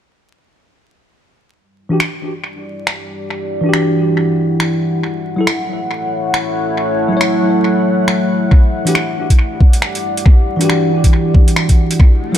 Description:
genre	future garage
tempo	138 BPM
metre	4/4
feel	swing 60% on 16ths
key	E dorian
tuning	A4 = 438 Hz
part	deep dark ambient pad	sustained chords	2.6-12.4 s	G3 to F#5	-20 LUFS	left 1 dB	chorus, built-in reverb, sidechain pumping
part	bell-like tine electric piano	accompaniment	1.9-12.4 s	E3 to C#5	-16 LUFS	equal	wide subtle chorus, sidechain pumping, low-pass filter, tape echo
part	garage drum kit	drums	2.0-12.4 s	finger snaps, hi-hat	-20 LUFS	equal	overdrive, analog delay
part	electronic kick drum	drums	8.5-12.1 s	none	-8 LUFS	equal	overdrive
part	riser	sound effects	12.2-12.4 s	none	-26 LUFS	equal	none
room	moderate echo chamber reverb, RT60 1.8 s, digital ambience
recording	echo-heavy mix, vinyl crackle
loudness	-12 LUFS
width	side -10 dB against mid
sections	1.6-12.4 A section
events	filter sweep on tine electric piano 1.6-12.4; riser 12.2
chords	1.6 Em9; 5.0 F#m7; 8.5 Em9

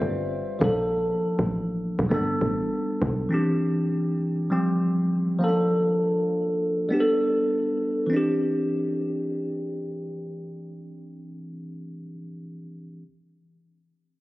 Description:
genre	afrobeats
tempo	100 BPM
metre	4/4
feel	swing 58% on 16ths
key	C major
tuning	A4 = 444 Hz
part	tine electric piano	accompaniment	0.0-13.0 s	E3 to C5	-24 LUFS	equal	phaser
part	woody log drum bass	bass	0.0-3.3 s	G1 to B1	-27 LUFS	equal	none
room	moderate lush hall reverb, RT60 2.7 s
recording	recorded on a phone in the room, studio reverb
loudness	-22 LUFS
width	side -18 dB against mid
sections	0.0-8.1 A section; 8.1-10.5 B section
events	none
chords	0.0 Fsus2; 0.6 Bbmaj7; 2.1 Gadd9; 3.3 Cadd9; 4.5 Fsus2; 5.4 Bbmaj7; 6.9 Gadd9; 8.1 Cadd9

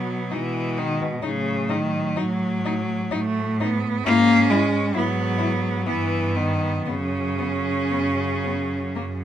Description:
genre	classical, lyrical piece for cello ensemble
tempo	57-67 BPM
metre	3/4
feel	rubato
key	B major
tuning	A4 = 440 Hz
part	rich cello	second line	0.0-9.2 s	F#3 to C#4	-27 LUFS	right 6 dB	none
part	rich cello	accompaniment	0.0-9.2 s	B2 to A#3	-24 LUFS	left 3 dB	none
part	rich cello	bass	0.0-9.2 s	F#2 to B2	-27 LUFS	right 2 dB	none
part	rich cello	melody	0.3-9.0 s	A#3 to E4	-30 LUFS	left 5 dB	none
room	little or no reverb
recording	close, detailed microphones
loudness	-20 LUFS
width	side -10 dB against mid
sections	0.0-9.2 A section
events	none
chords	0.0 B; 1.2 B9/A (rootless); 4.1 E/G# (rootless); 5.9 Em/G; 6.9 F#5

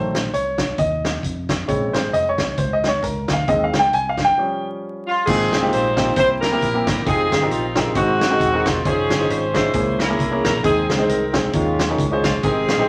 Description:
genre	uptempo gospel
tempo	134 BPM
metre	4/4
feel	swing 56% on 8ths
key	Ab major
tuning	A4 = 443 Hz
part	warm grand piano	accompaniment	0.0-12.9 s	Ab2 to Ab5	-23 LUFS	equal	none
part	fingered electric bass	bass	0.0-12.9 s	Eb1 to F2	-29 LUFS	equal	none
part	swinging big-band drum kit	drums	0.1-12.8 s	crash cymbal, hi-hat, kick drum, snare drum	-26 LUFS	equal	none
part	clear saxophone section	melody	5.1-12.9 s	Ab3 to C5	-23 LUFS	equal	none
room	moderate studio reverb, RT60 0.7 s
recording	vinyl crackle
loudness	-19 LUFS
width	mono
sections	0.0-5.3 A section; 5.3-12.9 B section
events	grand piano solo 0.0-5.3; break 4.4-5.3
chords	0.0 F7/A; 1.7 Bbm9; 3.5 Ab; 4.4 Fsus2; 5.3 Ab69; 6.2 C7; 7.1 Fm9; 8.0 Ab7; 8.9 Dbmaj9/F; 9.7 Dbm6; 10.6 Ab; 11.5 Eb9sus4

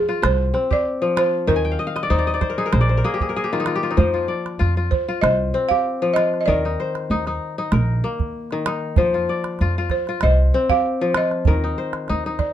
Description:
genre	west african traditional, West African string and xylophone music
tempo	96 BPM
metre	4/4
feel	swing 53% on 16ths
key	F dorian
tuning	A4 = 440 Hz
part	balafon	melody	0.0-12.5 s	Ab4 to F5	-21 LUFS	right 4 dB	none
part	kora	arpeggios	0.0-12.5 s	Eb3 to Ab5	-22 LUFS	left 4 dB	none
part	calabash	percussion	0.1-12.5 s	none	-22 LUFS	right 4 dB	none
part	upright bass	bass	0.2-12.4 s	Bb1 to F2	-20 LUFS	equal	none
room	moderate small room reverb, RT60 0.5 s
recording	dark, warm production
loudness	-18 LUFS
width	side -11 dB against mid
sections	0.0-12.5 A section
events	kora fill 1.6-4.0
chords	0.0 F5; 1.5 Eb5; 4.0 F5; 6.5 Eb5; 9.0 F5; 11.5 Eb5

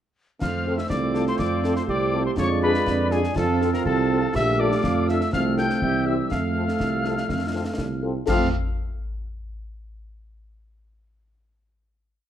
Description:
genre	military-style march for wind band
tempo	122 BPM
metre	2/4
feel	straight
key	F major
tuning	A4 = 440 Hz
part	clear cornet	melody	0.4-8.5 s	Ab4 to G5	-29 LUFS	equal	none
part	mellow piccolo	second line	0.4-8.6 s	Ab5 to G6	-31 LUFS	left 4 dB	none
part	mellow woodwind section	second line	0.4-8.5 s	G4 to F5	-32 LUFS	left 2 dB	none
part	clear trombone section	sustained chords	0.4-8.5 s	E3 to D4	-28 LUFS	right 1 dB	none
part	mellow tuba	bass	0.4-8.5 s	Bb1 to F2	-26 LUFS	right 3 dB	none
part	concert snare drum, clash cymbals and concert bass drum	drums	0.4-8.6 s	none	-31 LUFS	left 2 dB	none
part	warm French horn section	accompaniment	0.7-8.5 s	C4 to A4	-29 LUFS	left 4 dB	none
part	warm euphonium	second line	0.9-8.0 s	A3 to G4	-30 LUFS	right 4 dB	none
room	moderate large studio reverb, RT60 1.1 s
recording	dark, warm production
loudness	-20 LUFS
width	side -10 dB against mid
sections	0.4-8.3 A section; 8.3-9.3 final chord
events	none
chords	0.4 F; 2.4 Fdim7; 3.4 F; 4.3 Bbmaj7; 5.3 F/C; 5.8 C; 6.3 F

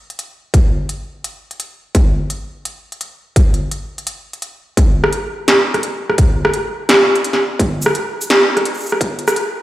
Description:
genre	drum and bass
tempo	170 BPM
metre	4/4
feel	half-time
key	none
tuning	none
part	industrial drum kit	drums	0.1-9.4 s	hi-hat, rim click, shaker, snare drum	-15 LUFS	equal	overdrive
part	electronic kick drum	drums	0.5-9.1 s	none	-13 LUFS	equal	distortion, overdrive
room	wet lush hall reverb, RT60 2.1 s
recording	played on a big sound system in a bare room, stone room reverb, high-pass filter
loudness	-13 LUFS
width	side -15 dB against mid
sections	0.0-4.8 A section; 4.8-9.6 B section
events	build-up 4.8-9.6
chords	none

